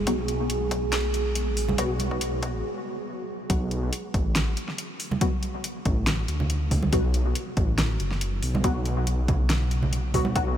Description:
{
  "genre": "deep dubstep",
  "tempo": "140 BPM",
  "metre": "4/4",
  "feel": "swing 53% on 16ths, half-time",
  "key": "B dorian",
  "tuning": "A4 = 440 Hz",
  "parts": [
    { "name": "deep dark ambient pad", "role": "sustained chords", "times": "0.0-3.5 s", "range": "B3 to G#4", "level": "-32 LUFS", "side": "right 4 dB", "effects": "chorus, built-in reverb" },
    { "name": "dark detuned saw bass", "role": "bass", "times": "0.0-10.6 s", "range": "F#1 to D2", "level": "-26 LUFS", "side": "equal", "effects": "tube saturation" },
    { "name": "filtered dub chord stab", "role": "stabs", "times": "0.1-10.5 s", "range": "F#3 to F#4", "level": "-32 LUFS", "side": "left 2 dB", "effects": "phaser, ensemble chorus, cassette tape, dub echo" },
    { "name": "deep house drum kit", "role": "drums", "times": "0.1-10.4 s", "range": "hi-hat, snare drum", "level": "-31 LUFS", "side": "equal", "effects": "overdrive, high-pass filter on hats, studio ambience, high-pass filter on snare" },
    { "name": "electronic kick drum", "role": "drums", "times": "0.1-10.4 s", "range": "none", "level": "-27 LUFS", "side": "equal", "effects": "overdrive, high-pass filter on kick, studio ambience" },
    { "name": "congas", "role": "percussion", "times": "1.7-2.1, 5.1-10.3 s", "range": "none", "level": "-33 LUFS", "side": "right 3 dB", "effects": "dub echo" }
  ],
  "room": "moderate huge ambient reverb, RT60 8.2 s",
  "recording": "dreamy mix soaked in reverb",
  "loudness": "-23 LUFS",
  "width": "side -10 dB against mid",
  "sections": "0.0-3.5 A section; 3.5-10.6 B section",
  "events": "build-up 0.0-3.5; filter sweep on synth stab 0.0-3.5; filter sweep on ambient pad 0.0-3.5; break 2.6-3.5; drop 3.5-10.6",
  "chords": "0.0 B5",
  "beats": "| 0.07 0.50 0.93 1.36 | 1.78 2.21 2.64 3.07 | 3.50 3.93 4.36 4.79 | 5.21 5.64 6.07 6.50 | 6.93 7.36 7.79 8.21 | 8.64 9.07 9.50 9.93 | 10.36"
}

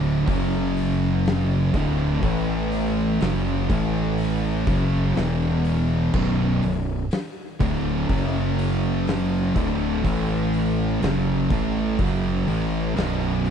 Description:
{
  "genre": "stoner and doom metal",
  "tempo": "62 BPM",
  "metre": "4/4",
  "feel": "straight",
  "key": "B minor",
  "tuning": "A4 = 436 Hz",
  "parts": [
    { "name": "thick fuzz guitar", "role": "riff", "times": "0.0-13.5 s", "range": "B1 to A3", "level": "-26 LUFS", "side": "left 8 dB", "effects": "distortion" },
    { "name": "thick fuzz guitar", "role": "riff", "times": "0.0-13.5 s", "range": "B1 to A3", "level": "-26 LUFS", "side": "right 9 dB", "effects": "distortion" },
    { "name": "thick fuzz guitar", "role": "riff", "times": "0.0-13.5 s", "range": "B1 to A3", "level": "-27 LUFS", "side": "equal", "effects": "distortion" },
    { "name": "growling fingered electric bass", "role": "bass", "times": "0.0-13.5 s", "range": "B0 to A1", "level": "-28 LUFS", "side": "equal", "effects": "overdrive" },
    { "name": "oversized low-tuned drum kit", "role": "drums", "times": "0.3-13.5 s", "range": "crash cymbal, hi-hat, kick drum, snare drum", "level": "-29 LUFS", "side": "equal", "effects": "vintage 12-bit sampler grit" }
  ],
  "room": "light reverb",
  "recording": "dry, close 1970s-style studio recording",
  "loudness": "-20 LUFS",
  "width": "side -7 dB against mid",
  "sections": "0.0-13.5 A section",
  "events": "none",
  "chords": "0.3 F#5; 1.8 D5; 2.2 A5; 3.2 F#5; 3.7 A5; 4.7 F#5; 5.2 E5; 6.1 Bm; 8.1 F#5; 9.6 D5; 10.0 A5; 11.0 B5",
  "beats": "0.28 1.26 | 2.24 3.22 4.19 5.17 | 6.14 7.12 8.09 9.07 | 10.04 11.02 11.99 12.96"
}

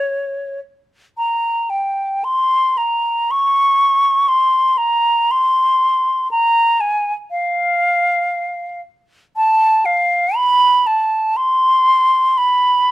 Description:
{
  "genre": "classical, free, expressive piece for unaccompanied flute",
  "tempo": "55-63 BPM",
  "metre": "4/4",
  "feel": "rubato",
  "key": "unclear",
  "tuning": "A4 = 440 Hz",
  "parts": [
    { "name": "hollow concert flute", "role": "solo", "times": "0.0-12.9 s", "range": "Db5 to Db6", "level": "-13 LUFS", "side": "equal", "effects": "none" }
  ],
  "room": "little or no reverb",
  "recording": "close, detailed microphones",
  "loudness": "-13 LUFS",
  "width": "side -16 dB against mid",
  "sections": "0.0-12.9 A section",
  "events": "none",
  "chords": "none",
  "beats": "0.10 | 1.18 2.26 3.32 4.30 | 5.31 6.32 7.32 8.35 | 9.37 10.37 11.38 12.37"
}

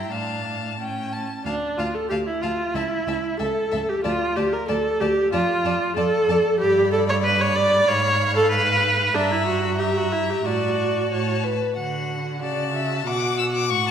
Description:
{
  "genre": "quick classical-period movement for string quartet",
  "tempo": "93 BPM",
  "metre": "2/4",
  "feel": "straight",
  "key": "D minor, D major from 6.6 s",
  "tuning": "A4 = 439 Hz",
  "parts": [
    { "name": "warm violin", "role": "melody", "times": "0.0-13.9 s", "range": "A5 to E6", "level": "-31 LUFS", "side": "left 8 dB", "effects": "none" },
    { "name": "rich violin", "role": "second line", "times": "0.0-13.9 s", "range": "B4 to A5", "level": "-29 LUFS", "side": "left 4 dB", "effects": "none" },
    { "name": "clear viola", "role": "accompaniment", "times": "0.0-13.9 s", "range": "C#4 to D5", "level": "-22 LUFS", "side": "right 1 dB", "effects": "none" },
    { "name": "rich cello", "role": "bass", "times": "0.0-13.9 s", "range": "C#2 to D3", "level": "-27 LUFS", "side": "right 2 dB", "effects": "none" }
  ],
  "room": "wet concert hall reverb, RT60 2.0 s",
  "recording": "recorded in a church or concert hall",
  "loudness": "-20 LUFS",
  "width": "side -8 dB against mid",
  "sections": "0.0-1.5 A section; 1.5-11.8 B section; 11.8-13.9 C section",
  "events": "none",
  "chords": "0.1 Dm/A; 0.8 A; 1.5 Dm; 2.8 A/C#; 4.0 D5; 5.3 Dm/F; 6.6 G; 7.9 G#m6; 9.1 Edim/G; 10.4 D/A; 11.8 D; 13.1 B5",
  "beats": "| 0.12 0.80 | 1.46 2.11 | 2.75 3.40 | 4.05 4.69 | 5.33 5.97 | 6.61 7.24 | 7.88 8.51 | 9.15 9.79 | 10.45 11.11 | 11.77 12.43 | 13.07 13.71"
}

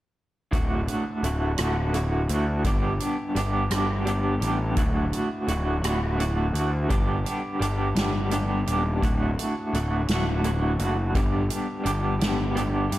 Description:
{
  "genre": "psychedelic rock",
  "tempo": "56 BPM (dotted quarters)",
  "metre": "6/8",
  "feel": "straight",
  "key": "D major",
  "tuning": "A4 = 440 Hz",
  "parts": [
    { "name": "electric guitar through a small old amp", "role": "riff", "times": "0.5-13.0 s", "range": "D2 to G4", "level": "-26 LUFS", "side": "right 1 dB", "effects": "tremolo" },
    { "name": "fuzz picked electric bass", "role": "bass", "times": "0.5-13.0 s", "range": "D1 to G2", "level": "-26 LUFS", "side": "equal", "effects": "overdrive" },
    { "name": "soft-mallet drum kit", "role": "drums", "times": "0.5-13.0 s", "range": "hi-hat, kick drum, rim click, snare drum", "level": "-29 LUFS", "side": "equal", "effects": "none" }
  ],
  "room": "light reverb, small room ambience",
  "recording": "none",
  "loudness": "-23 LUFS",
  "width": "side -15 dB against mid",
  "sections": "0.5-13.0 A section",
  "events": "none",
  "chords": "0.5 D; 2.6 G; 4.8 D; 6.9 G; 9.0 D; 11.2 G",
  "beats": "| 0.52 1.59 | 2.65 3.71 | 4.77 5.83 | 6.90 7.96 | 9.02 10.09 | 11.15 12.22"
}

